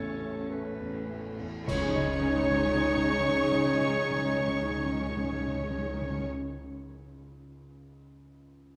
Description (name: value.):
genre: cinematic, emotional film score for orchestra.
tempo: 54 BPM.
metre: 4/4.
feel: rubato.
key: unclear.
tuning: A4 = 440 Hz.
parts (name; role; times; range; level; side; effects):
rich studio violin section; melody; 0.0-6.3 s; C#6; -40 LUFS; equal; none.
bright clarinet; second line; 0.0-1.7 s; A4 to B4; -45 LUFS; equal; none.
clear oboe; second line; 0.0-6.3 s; C#5; -38 LUFS; equal; none.
rich studio violin section; second line; 0.0-6.3 s; C#5; -40 LUFS; equal; none.
silver concert flute; second line; 0.0-6.3 s; C#5; -37 LUFS; equal; none.
dark grand piano; accompaniment; 0.0-8.8 s; A1 to D#5; -40 LUFS; equal; none.
dark studio viola section; accompaniment; 0.0-6.3 s; A3 to G#4; -38 LUFS; equal; none.
dark French horn section; sustained chords; 0.0-6.3 s; G#3 to D#4; -40 LUFS; equal; none.
rich studio double bass section; bass; 0.0-6.3 s; A1 to C#2; -41 LUFS; equal; none.
warm studio cello section; bass; 0.0-6.3 s; C#3 to C#4; -39 LUFS; equal; none.
clash cymbals and concert bass drum; percussion; 1.7-3.9 s; none; -45 LUFS; equal; none.
timpani; percussion; 1.7-6.3 s; C#3; -38 LUFS; equal; none.
room: wet concert hall reverb, RT60 2.3 s.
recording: studio ambience.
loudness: -29 LUFS.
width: mono.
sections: 0.0-1.7 A section; 1.7-6.1 B section.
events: slowing down 0.0-1.7; band accent 1.7-2.8.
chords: 0.0 A; 1.7 C#sus2.